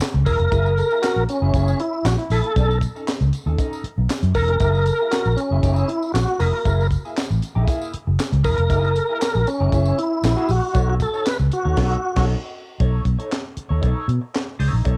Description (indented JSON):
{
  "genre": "funk",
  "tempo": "117 BPM",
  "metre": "4/4",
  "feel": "straight",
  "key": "F# mixolydian",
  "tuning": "A4 = 439 Hz",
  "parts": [
    { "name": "clean electric guitar", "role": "accompaniment", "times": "0.0-15.0 s", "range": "A#3 to C#5", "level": "-34 LUFS", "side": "equal", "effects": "wah, cassette tape" },
    { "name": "tight funk drum kit", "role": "drums", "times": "0.0-15.0 s", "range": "crash cymbal, handclaps, hi-hat, kick drum, snare drum", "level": "-27 LUFS", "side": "equal", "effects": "cassette tape" },
    { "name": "tambourine", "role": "percussion", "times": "0.0-11.6 s", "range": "none", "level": "-44 LUFS", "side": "equal", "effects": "none" },
    { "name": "vintage muted fingered electric bass", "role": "bass", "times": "0.1-15.0 s", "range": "E1 to B2", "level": "-22 LUFS", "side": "equal", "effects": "none" },
    { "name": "tonewheel organ", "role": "melody", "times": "0.3-12.3 s", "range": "C#4 to B4", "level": "-24 LUFS", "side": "equal", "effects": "chorus vibrato, fast rotary speaker" },
    { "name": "dark trombone", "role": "second line", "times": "0.8-10.6 s", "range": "E4 to A#4", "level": "-32 LUFS", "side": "equal", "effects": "cassette tape" }
  ],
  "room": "light reverb, small room ambience",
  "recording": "home recording on cassette",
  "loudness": "-20 LUFS",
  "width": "mono",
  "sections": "0.0-12.8 A section; 12.8-15.0 B section",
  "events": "band accent 11.8-12.8",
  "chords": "0.0 F#9; 2.6 B9; 4.6 F#9; 10.7 B9"
}